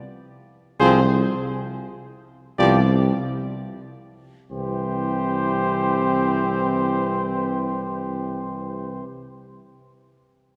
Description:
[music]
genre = classical, brass quintet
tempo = free time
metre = none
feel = none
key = C major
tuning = A4 = 440 Hz
[part]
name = dark trumpet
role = melody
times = 0.8-9.0 s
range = C5 to D5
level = -30 LUFS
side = equal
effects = none
[part]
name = mellow flugelhorn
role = second line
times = 0.8-9.0 s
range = G4 to Ab4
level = -30 LUFS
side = equal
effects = none
[part]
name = warm French horn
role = accompaniment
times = 0.8-9.0 s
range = B3 to C4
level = -33 LUFS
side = equal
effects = none
[part]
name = warm euphonium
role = accompaniment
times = 0.8-9.0 s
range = E3 to F3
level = -31 LUFS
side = equal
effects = none
[part]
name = mellow tuba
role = bass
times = 0.8-9.0 s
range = C2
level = -26 LUFS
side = equal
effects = none
[sound]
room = wet church reverb, RT60 2.7 s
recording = none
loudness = -22 LUFS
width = mono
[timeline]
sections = 0.0-4.5 A section; 4.5-8.4 B section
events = slowing down 0.0-4.5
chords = 0.0 N.C.; 2.6 G7/C (rootless); 4.5 C

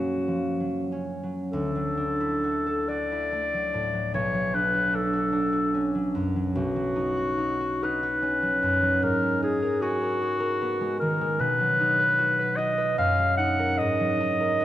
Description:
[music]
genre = classical, impressionist duo for clarinet and harp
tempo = 61-78 BPM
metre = 3/4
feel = rubato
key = D major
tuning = A4 = 440 Hz
[part]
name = warm clarinet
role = melody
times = 0.0-14.6 s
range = F#4 to F#5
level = -25 LUFS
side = left 1 dB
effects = none
[part]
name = concert harp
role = accompaniment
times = 0.0-14.6 s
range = B1 to B4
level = -27 LUFS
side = right 1 dB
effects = none
[sound]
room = wet scoring stage reverb, RT60 2.0 s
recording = none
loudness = -23 LUFS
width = side -13 dB against mid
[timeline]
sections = 0.0-1.5 A section; 1.5-14.6 B section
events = none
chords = 0.0 F#maj7; 1.5 Dadd9; 4.1 Bm9; 6.6 Badd9; 9.0 G#m9; 11.4 B; 13.0 F#69; 13.8 G#7sus2

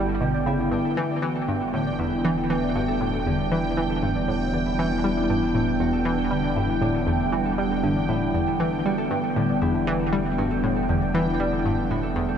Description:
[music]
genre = ambient, sequencer-driven space music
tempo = 118 BPM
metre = 4/4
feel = straight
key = unclear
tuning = A4 = 440 Hz
[part]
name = evolving wavetable pad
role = sustained chords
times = 0.0-12.4 s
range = E3 to E4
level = -26 LUFS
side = right 1 dB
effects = chorus, built-in reverb
[part]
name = concert harp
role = arpeggios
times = 0.0-12.4 s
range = D3 to D5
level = -28 LUFS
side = left 3 dB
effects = auto-pan, tape echo
[part]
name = analog pluck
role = riff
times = 0.0-12.3 s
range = E2 to G3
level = -26 LUFS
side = equal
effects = chorus, tape echo
[part]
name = warm sub bass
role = bass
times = 0.0-12.4 s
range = E1 to G1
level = -33 LUFS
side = equal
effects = none
[part]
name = bubbling stepped-filter texture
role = texture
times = 0.0-12.4 s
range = G5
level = -31 LUFS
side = right 6 dB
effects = chorus, built-in reverb
[sound]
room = wet huge ambient reverb, RT60 7.7 s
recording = none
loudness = -21 LUFS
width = side -8 dB against mid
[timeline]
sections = 0.0-12.4 A section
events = none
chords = 0.0 G; 1.0 Em7

